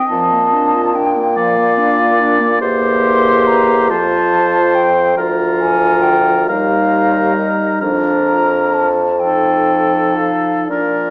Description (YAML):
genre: classical, slow romantic movement for wind quintet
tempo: 37-48 BPM (dotted quarters)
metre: 6/8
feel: rubato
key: Bb major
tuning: A4 = 440 Hz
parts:
  - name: mellow hollow silver concert flute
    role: melody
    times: 0.0-11.1 s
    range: D5 to C6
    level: -17 LUFS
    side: left 1 dB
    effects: none
  - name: warm oboe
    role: second line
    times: 0.0-11.1 s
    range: A4 to Eb5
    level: -17 LUFS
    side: left 1 dB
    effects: none
  - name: clear clarinet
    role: accompaniment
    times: 0.0-11.1 s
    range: F3 to G4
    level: -19 LUFS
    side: right 1 dB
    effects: none
  - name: mellow French horn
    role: accompaniment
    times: 0.0-11.1 s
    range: F3 to C4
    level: -23 LUFS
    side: equal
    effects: none
  - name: warm bassoon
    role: bass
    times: 0.1-11.1 s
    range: D2 to Bb2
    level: -17 LUFS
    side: equal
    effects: none
room: wet recital hall reverb, RT60 1.4 s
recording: small speaker sound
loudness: -11 LUFS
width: side -22 dB against mid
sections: 0.0-11.1 A section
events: none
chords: 0.1 Bb; 2.6 C7/E; 3.9 F; 5.2 Bb/D; 6.5 Eb; 7.8 Bb/F; 9.2 F7